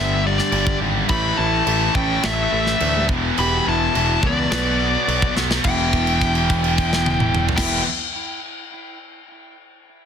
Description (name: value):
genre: hard rock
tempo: 106 BPM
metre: 4/4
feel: straight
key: E minor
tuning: A4 = 440 Hz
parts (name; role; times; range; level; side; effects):
- nasal lead guitar with a parked wah; melody; 0.0-7.8 s; D5 to B5; -23 LUFS; left 3 dB; overdrive, tape echo
- lightly driven lead guitar; second line; 0.0-7.8 s; G3 to G4; -29 LUFS; right 5 dB; tape echo
- high-gain distorted guitar; riff; 0.0-7.9 s; E2 to B3; -26 LUFS; right 13 dB; distortion
- overdriven electric guitar; riff; 0.0-7.8 s; E2 to B3; -26 LUFS; left 11 dB; none
- overdriven electric guitar; riff; 0.0-7.8 s; E2 to B3; -26 LUFS; equal; spring reverb
- modern bright picked electric bass; bass; 0.0-7.8 s; E1 to D2; -24 LUFS; equal; none
- tight metal drum kit; drums; 0.4-7.7 s; crash cymbal, kick drum, snare drum, toms; -24 LUFS; equal; soft clipping on kick, soft clipping on snare
room: light reverb, small room ambience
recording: dense, heavily limited modern master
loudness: -17 LUFS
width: side -8 dB against mid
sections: 0.0-5.6 A section; 5.6-7.9 B section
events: drum fill 5.4; held note 5.6-7.6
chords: 0.0 G5; 1.1 A5; 3.1 E5; 4.5 Bm; 5.6 Em